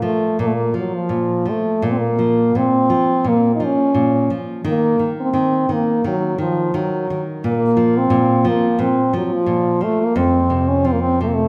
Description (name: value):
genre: fado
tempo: 86 BPM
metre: 4/4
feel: rubato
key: Bb harmonic minor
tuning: A4 = 440 Hz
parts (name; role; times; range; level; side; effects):
- clear French horn; melody; 0.0-11.5 s; F3 to Eb4; -19 LUFS; equal; none
- nylon-string guitar; accompaniment; 0.0-11.5 s; F2 to F3; -23 LUFS; equal; none
room: wet recital hall reverb, RT60 1.6 s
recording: none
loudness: -18 LUFS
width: mono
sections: 0.0-1.8 A section; 1.8-11.5 B section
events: none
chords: 0.0 Bb5; 4.6 N.C.; 7.4 Bb5; 10.2 F5